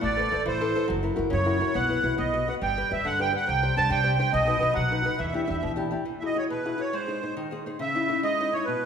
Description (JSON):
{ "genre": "italian folk, Italian serenade", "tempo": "139 BPM (dotted quarters)", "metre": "6/8", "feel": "rubato", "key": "E minor", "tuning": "A4 = 440 Hz", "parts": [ { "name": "accordion", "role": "melody", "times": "0.0-8.9 s", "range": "B4 to A5", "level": "-26 LUFS", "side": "right 2 dB", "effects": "light tremolo tuning" }, { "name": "nylon-string guitar", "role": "accompaniment", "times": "0.0-8.9 s", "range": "B2 to D#5", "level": "-29 LUFS", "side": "left 2 dB", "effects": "none" }, { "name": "upright bass", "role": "bass", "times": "0.0-5.9 s", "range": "F#1 to E3", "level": "-30 LUFS", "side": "left 1 dB", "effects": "none" } ], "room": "wet recital hall reverb, RT60 1.7 s", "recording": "recorded in a church or concert hall", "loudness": "-23 LUFS", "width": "side -7 dB against mid", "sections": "0.0-6.1 A section; 6.1-8.9 B section", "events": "none", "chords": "0.0 Amadd9; 0.9 F#7; 1.7 Bsus4; 2.2 B; 2.6 G; 3.5 Csus2; 4.3 B; 5.2 Em7; 6.1 Eadd9; 6.9 G#; 7.8 C#madd9" }